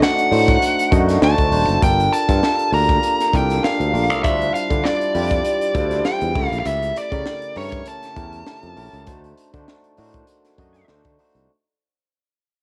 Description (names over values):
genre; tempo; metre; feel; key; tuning
polished 1980s jazz-funk pop; 99 BPM; 4/4; swing 54% on 16ths; unclear; A4 = 440 Hz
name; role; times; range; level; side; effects
nasal lead guitar with a parked wah; melody; 0.0-10.9 s; C#5 to Bb5; -23 LUFS; equal; overdrive, cassette tape, plate reverb
barky tine electric piano; accompaniment; 0.0-11.5 s; C#3 to Eb5; -26 LUFS; equal; subtle chorus, plate reverb
crisp fusion drum kit; drums; 0.0-11.5 s; crash cymbal, hi-hat, kick drum, snare drum; -25 LUFS; equal; cassette tape
modern bright fingered electric bass; bass; 0.3-11.5 s; Eb1 to D3; -23 LUFS; equal; none
room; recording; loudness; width
moderate studio reverb, RT60 0.6 s; home recording on cassette; -18 LUFS; mono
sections
0.0-11.5 A section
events
fade-out 0.0-11.5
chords
0.0 D7b9; 1.8 Gm9; 4.2 Dm11; 6.4 A7b9; 9.1 D7b9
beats
0.01 0.62 1.22 | 1.83 2.43 3.04 3.64 | 4.24 4.85 5.45 6.05 | 6.66 7.26 7.87 8.47 | 9.08 9.68 10.29 10.89